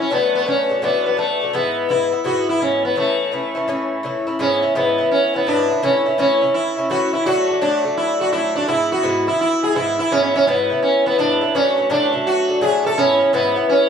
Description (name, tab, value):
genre	celtic folk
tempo	168 BPM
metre	4/4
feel	swing 65% on 8ths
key	unclear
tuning	A4 = 440 Hz
part	sitar	melody	0.0-13.9 s	A3 to A4	-17 LUFS	right 1 dB	tape echo
part	Irish bouzouki	accompaniment	0.0-13.9 s	G#2 to E4	-21 LUFS	left 2 dB	none
room	moderate studio ambience, RT60 0.5 s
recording	small room ambience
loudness	-16 LUFS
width	side -7 dB against mid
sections	0.0-4.4 A section; 4.4-13.9 B section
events	none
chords	0.1 D; 1.5 E; 3.0 A; 4.4 E; 5.8 A; 7.3 D; 8.7 E; 11.5 D; 13.0 E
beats	| 0.11 0.47 0.83 1.18 | 1.54 1.90 2.26 2.61 | 2.97 3.33 3.69 4.04 | 4.40 4.76 5.12 5.47 | 5.83 6.19 6.55 6.90 | 7.26 7.62 7.98 8.33 | 8.69 9.05 9.40 9.76 | 10.12 10.48 10.83 11.19 | 11.55 11.91 12.26 12.62 | 12.98 13.34 13.69